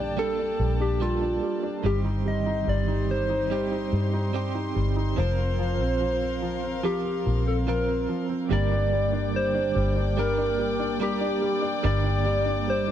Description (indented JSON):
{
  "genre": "pop ballad",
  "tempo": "72 BPM",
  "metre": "4/4",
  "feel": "straight",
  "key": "G minor",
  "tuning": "A4 = 444 Hz",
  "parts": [
    { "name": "soft struck synth lead", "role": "melody", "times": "0.0-12.9 s", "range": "F4 to Eb5", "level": "-28 LUFS", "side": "left 1 dB", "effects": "chorus, slapback echo" },
    { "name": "clear concert grand piano", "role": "accompaniment", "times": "0.0-12.9 s", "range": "F3 to Eb4", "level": "-31 LUFS", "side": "equal", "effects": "none" },
    { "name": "warm studio string section", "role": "sustained chords", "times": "0.0-12.9 s", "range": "Bb3 to D6", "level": "-34 LUFS", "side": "left 2 dB", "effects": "none" },
    { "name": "direct-recorded clean electric guitar", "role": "arpeggios", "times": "0.0-12.9 s", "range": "G2 to Bb4", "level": "-32 LUFS", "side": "right 14 dB", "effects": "tremolo" },
    { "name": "vintage muted fingered electric bass", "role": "bass", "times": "0.0-12.9 s", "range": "F1 to G2", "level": "-27 LUFS", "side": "equal", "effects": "none" }
  ],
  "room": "little or no reverb",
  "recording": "dry, close 1970s-style studio recording",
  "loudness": "-23 LUFS",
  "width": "side -10 dB against mid",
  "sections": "0.0-8.5 A section; 8.5-12.9 B section",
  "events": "none",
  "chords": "0.0 Gmadd9; 1.8 Cm/G; 5.2 Fsus4; 8.5 Gm"
}